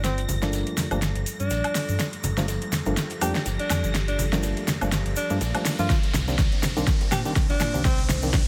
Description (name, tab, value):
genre	deep house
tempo	123 BPM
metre	4/4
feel	swing 56% on 16ths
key	G minor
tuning	A4 = 435 Hz
part	bright alto saxophone	melody	0.0-8.0 s	C4 to G4	-33 LUFS	equal	low-pass filter, digital delay
part	dark analog pad	sustained chords	0.0-8.5 s	F3 to C5	-39 LUFS	equal	chorus, phaser, sidechain pumping
part	smooth synth bass	bass	0.0-8.4 s	G1 to Bb2	-30 LUFS	equal	none
part	deep house drum kit	drums	0.0-8.4 s	hi-hat, snare drum, woodblock	-31 LUFS	equal	overdrive
part	unplugged drum kit	drums	0.0-8.5 s	hi-hat, shaker, snare drum	-44 LUFS	equal	none
part	cabasa	percussion	0.0-8.4 s	none	-41 LUFS	equal	none
part	riser	sound effects	1.2-8.5 s	none	-40 LUFS	equal	none
part	string machine, violins	texture	0.0-8.5 s	Bb6	-43 LUFS	equal	ensemble chorus, sidechain pumping
part	congas	percussion	0.3-8.4 s	none	-36 LUFS	equal	none
part	percussive organ stab	stabs	0.4-8.3 s	Eb3 to D4	-33 LUFS	equal	analog chorus, sidechain pumping, digital delay
part	electronic kick drum	drums	5.9-8.4 s	none	-26 LUFS	equal	overdrive
room	light reverb, studio reverb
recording	none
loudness	-24 LUFS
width	mono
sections	0.0-8.5 A section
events	build-up 0.0-8.5; drum fill 0.0-8.5; filter sweep on alto saxophone 0.0-8.5; riser 1.2-8.5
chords	0.0 Gm9; 5.9 Cm9